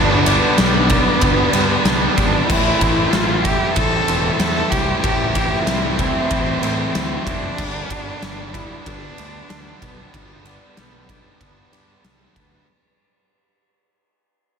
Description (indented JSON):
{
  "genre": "post-rock",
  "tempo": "94 BPM",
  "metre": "4/4",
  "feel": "straight",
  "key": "unclear",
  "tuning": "A4 = 439 Hz",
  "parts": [
    { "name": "rich cello", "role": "melody", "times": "0.0-12.0 s", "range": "B3 to A4", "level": "-23 LUFS", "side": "equal", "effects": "tape echo" },
    { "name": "electric guitar through a small old amp", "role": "arpeggios", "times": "0.0-12.7 s", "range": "G2 to E4", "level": "-27 LUFS", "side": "left 3 dB", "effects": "spring reverb, tape echo" },
    { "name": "distorted electric guitar", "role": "riff", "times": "0.0-12.7 s", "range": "G2 to E4", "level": "-25 LUFS", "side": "left 12 dB", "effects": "overdrive" },
    { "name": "sludgy distorted guitar", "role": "riff", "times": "0.0-12.7 s", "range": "G2 to E4", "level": "-23 LUFS", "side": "right 11 dB", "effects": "overdrive" },
    { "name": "fuzz fingered electric bass", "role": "bass", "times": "0.0-12.6 s", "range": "E1 to A2", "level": "-24 LUFS", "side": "equal", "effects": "overdrive" },
    { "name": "oversized low-tuned drum kit", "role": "drums", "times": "0.3-12.5 s", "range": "crash cymbal, kick drum, ride cymbal, snare drum", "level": "-21 LUFS", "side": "equal", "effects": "none" }
  ],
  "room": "moderate large studio reverb, RT60 1.4 s, studio reverb",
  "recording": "none",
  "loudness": "-15 LUFS",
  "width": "side -6 dB against mid",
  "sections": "0.0-12.7 A section",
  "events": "fade-out 0.0-12.7",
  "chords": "0.0 G; 2.5 Am7; 7.6 G"
}